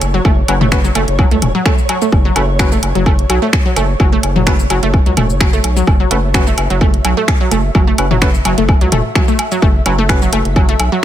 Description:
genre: minimal techno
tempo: 128 BPM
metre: 4/4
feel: swing 54% on 16ths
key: F# minor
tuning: A4 = 440 Hz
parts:
  - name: round analog bass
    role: bass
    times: 0.0-10.9 s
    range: E1 to C#2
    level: -17 LUFS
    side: equal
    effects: sidechain pumping
  - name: house drum kit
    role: drums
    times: 0.0-10.9 s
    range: finger snaps, hi-hat, shaker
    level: -21 LUFS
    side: right 1 dB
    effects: overdrive
  - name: electronic woodblock and toms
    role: percussion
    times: 0.0-10.9 s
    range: none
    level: -20 LUFS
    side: left 2 dB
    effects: ping-pong delay
  - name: flickering grainy texture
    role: texture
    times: 0.0-11.0 s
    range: C#5 to E5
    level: -26 LUFS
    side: right 1 dB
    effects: built-in reverb, sidechain pumping
  - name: resonant blip pluck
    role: riff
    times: 0.1-11.0 s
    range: F#3 to A3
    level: -17 LUFS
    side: right 1 dB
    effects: chorus, sidechain pumping, dub echo
  - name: electronic kick drum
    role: drums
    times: 0.2-10.7 s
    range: none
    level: -13 LUFS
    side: equal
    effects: overdrive
  - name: percussive organ stab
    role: stabs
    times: 0.5-10.2 s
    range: C#4 to B4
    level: -24 LUFS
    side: left 2 dB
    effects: chorus, vintage 12-bit sampler grit, ping-pong delay
room: digital ambience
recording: none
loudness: -10 LUFS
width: side -11 dB against mid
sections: 0.0-11.0 A section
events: none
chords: 0.0 F#sus4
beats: | 0.25 0.72 1.19 1.66 | 2.12 2.59 3.06 3.53 | 4.00 4.47 4.94 5.41 | 5.87 6.34 6.81 7.28 | 7.75 8.22 8.69 9.15 | 9.62 10.09 10.56 11.03

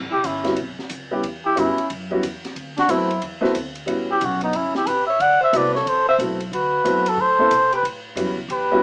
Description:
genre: jazz, small-group swing and bop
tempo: 182 BPM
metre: 4/4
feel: swing 63% on 8ths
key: A mixolydian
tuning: A4 = 440 Hz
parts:
  - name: upright bass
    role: bass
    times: 0.0-8.8 s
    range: E1 to B2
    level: -34 LUFS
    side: equal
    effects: none
  - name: trumpet with cup mute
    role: melody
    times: 0.1-8.8 s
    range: D#4 to F#5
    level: -18 LUFS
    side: equal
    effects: none
  - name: warm alto saxophone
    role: second line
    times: 0.1-8.8 s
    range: B3 to D5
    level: -26 LUFS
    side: equal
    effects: none
  - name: open jazz drum kit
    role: drums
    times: 0.2-8.6 s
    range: hi-hat, kick drum, ride cymbal, snare drum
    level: -32 LUFS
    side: equal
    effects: none
  - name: warm upright piano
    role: accompaniment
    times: 0.4-8.8 s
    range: G3 to A4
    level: -22 LUFS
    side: equal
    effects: none
room: moderate studio reverb, RT60 0.5 s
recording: heard from further back in the room, small speaker sound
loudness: -18 LUFS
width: side -39 dB against mid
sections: 0.0-8.8 A section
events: none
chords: 0.0 A13 (rootless); 2.6 D13; 3.9 A13; 5.2 D13; 7.8 A13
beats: 0.24 0.57 0.90 | 1.23 1.56 1.90 2.23 | 2.56 2.89 3.22 3.55 | 3.88 4.21 4.54 4.87 | 5.20 5.53 5.86 6.19 | 6.52 6.85 7.18 7.51 | 7.84 8.18 8.51

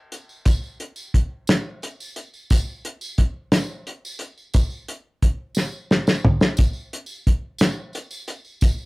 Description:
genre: rock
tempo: 59 BPM (dotted quarters)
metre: 6/8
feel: straight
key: none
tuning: none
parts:
  - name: cloth-damped thuddy drum kit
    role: drums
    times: 0.1-8.8 s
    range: hi-hat, kick drum, snare drum, toms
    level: -18 LUFS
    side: equal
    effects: none
  - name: tambourine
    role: percussion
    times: 0.1-8.9 s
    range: none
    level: -37 LUFS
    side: right 1 dB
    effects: none
room: moderate studio ambience, RT60 0.5 s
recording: rough rehearsal-room recording, warm saturation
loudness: -19 LUFS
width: side -24 dB against mid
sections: 0.0-8.9 A section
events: drum fill 5.6-6.6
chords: none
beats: | 0.46 1.48 | 2.50 3.52 | 4.54 5.57 | 6.58 7.60 | 8.62

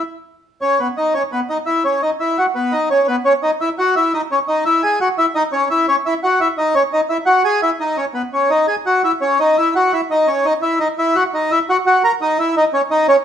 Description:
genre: tango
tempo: 114 BPM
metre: 4/4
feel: rubato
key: E major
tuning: A4 = 441 Hz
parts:
  - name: bandoneon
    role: solo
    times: 0.0-13.2 s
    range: B3 to A#5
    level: -14 LUFS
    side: equal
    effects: none
room: wet studio reverb, RT60 0.9 s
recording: heard from further back in the room, nothing above 10.5 kHz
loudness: -14 LUFS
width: side -9 dB against mid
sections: 0.6-13.2 A section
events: none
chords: 0.0 N.C.; 0.6 Esus2; 4.8 F#5; 6.9 B6; 9.0 C#madd9; 11.2 F#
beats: 0.07 | 0.61 1.14 1.67 2.20 | 2.73 3.25 3.78 4.30 | 4.83 5.35 5.87 6.39 | 6.91 7.44 7.97 8.50 | 9.03 9.57 10.10 10.63 | 11.16 11.69 12.21 12.73

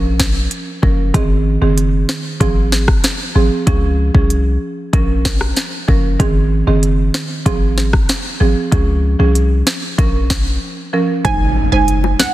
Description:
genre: dancehall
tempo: 95 BPM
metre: 4/4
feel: straight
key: Bb minor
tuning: A4 = 440 Hz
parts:
  - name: buzzing marimba with medium mallets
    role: accompaniment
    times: 0.0-11.9 s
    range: Eb3 to C5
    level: -19 LUFS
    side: right 3 dB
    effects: sidechain pumping
  - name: warm 808-style bass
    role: bass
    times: 0.0-12.2 s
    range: Gb1 to Db2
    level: -15 LUFS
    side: equal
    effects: none
  - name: afro-pop drum kit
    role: drums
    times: 0.2-12.3 s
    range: hi-hat, kick drum, rim click, snare drum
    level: -16 LUFS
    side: equal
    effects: none
  - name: analog pluck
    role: melody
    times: 11.2-12.3 s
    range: Gb5 to Ab5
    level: -18 LUFS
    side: right 6 dB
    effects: chorus
  - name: impact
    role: sound effects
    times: 11.3-12.3 s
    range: none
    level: -23 LUFS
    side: left 1 dB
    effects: none
  - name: bongos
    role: percussion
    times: 11.3-12.3 s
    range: none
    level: -23 LUFS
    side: left 11 dB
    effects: none
room: light reverb, digital ambience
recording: dense, heavily limited modern master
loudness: -13 LUFS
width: side -15 dB against mid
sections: 0.0-11.2 A section; 11.2-12.3 B section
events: break 10.6-11.2; impact 11.2-12.3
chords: 0.0 Bbm; 1.1 Ab; 2.4 Fm/Ab; 3.7 Db; 4.9 Bbm; 6.2 Ab; 7.5 Fm/Ab; 8.7 Db; 10.0 Bbm; 11.2 Ab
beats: 0.51 | 1.14 1.78 2.41 3.04 | 3.67 4.30 4.93 5.57 | 6.20 6.83 7.46 8.09 | 8.72 9.35 9.99 10.62 | 11.25 11.88

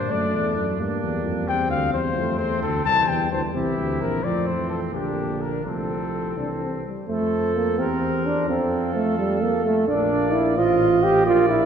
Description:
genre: classical, brass quintet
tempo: 86 BPM (dotted quarters)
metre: 6/8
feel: straight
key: F major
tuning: A4 = 440 Hz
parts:
  - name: dark trumpet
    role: melody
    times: 0.0-11.7 s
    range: G4 to A5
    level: -27 LUFS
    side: left 6 dB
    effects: none
  - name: clear trumpet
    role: second line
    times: 0.0-11.7 s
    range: C4 to Eb5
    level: -32 LUFS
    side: right 4 dB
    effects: none
  - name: mellow French horn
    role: accompaniment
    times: 0.0-11.7 s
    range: G3 to C5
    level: -29 LUFS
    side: left 2 dB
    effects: none
  - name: mellow trombone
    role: accompaniment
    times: 0.0-11.7 s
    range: D3 to G4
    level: -23 LUFS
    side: right 2 dB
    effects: none
  - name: mellow tuba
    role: bass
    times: 0.0-11.7 s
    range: A1 to G2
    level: -28 LUFS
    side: right 1 dB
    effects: none
room: wet concert hall reverb, RT60 2.2 s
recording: heard from further back in the room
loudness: -20 LUFS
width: side -7 dB against mid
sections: 0.0-7.1 A section; 7.1-11.7 B section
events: none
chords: 0.1 D; 0.8 Gm; 1.5 C; 2.2 F; 2.9 C; 3.5 C7; 4.2 F; 4.9 Gm/Bb; 5.7 F/C; 6.4 C; 7.1 F; 7.8 C7/E; 8.5 F; 9.9 Bb; 10.6 F7/A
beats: | 0.11 0.80 | 1.49 2.17 | 2.85 3.54 | 4.24 4.93 | 5.65 6.37 | 7.09 7.80 | 8.50 9.19 | 9.88 10.58 | 11.26

